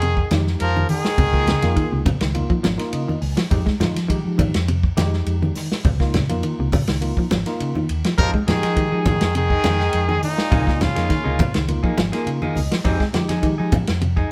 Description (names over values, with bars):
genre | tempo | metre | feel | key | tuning
afrobeat | 103 BPM | 4/4 | straight | F minor | A4 = 440 Hz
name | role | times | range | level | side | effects
clear trumpet | melody | 0.0-2.0, 8.2-11.7 s | Eb4 to Bb4 | -25 LUFS | equal | none
brilliant trombone | second line | 0.0-2.0, 8.2-11.7 s | Bb2 to F3 | -31 LUFS | equal | none
clean electric guitar | arpeggios | 0.0-14.2 s | C3 to Ab3 | -28 LUFS | equal | none
fingered electric bass | bass | 0.0-14.2 s | Ab1 to F3 | -25 LUFS | equal | none
warm soul drum kit | drums | 0.0-14.3 s | hi-hat, kick drum, ride cymbal, snare drum | -25 LUFS | equal | none
tine electric piano | accompaniment | 0.3-13.9 s | Ab3 to Ab5 | -31 LUFS | equal | overdrive
congas | percussion | 0.3-14.2 s | none | -27 LUFS | equal | none
electric guitar at the edge of break-up | stabs | 8.2-14.3 s | F3 to Ab4 | -30 LUFS | equal | none
room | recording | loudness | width
light reverb | band playing live in one room | -20 LUFS | mono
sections
0.0-14.3 A section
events
tine electric piano fill 2.6-3.5, 11.7-12.9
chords
0.0 Fm7; 1.2 Db69; 3.5 Fm7; 5.8 Db69; 8.2 Fm7; 10.5 Db69; 12.9 Fm7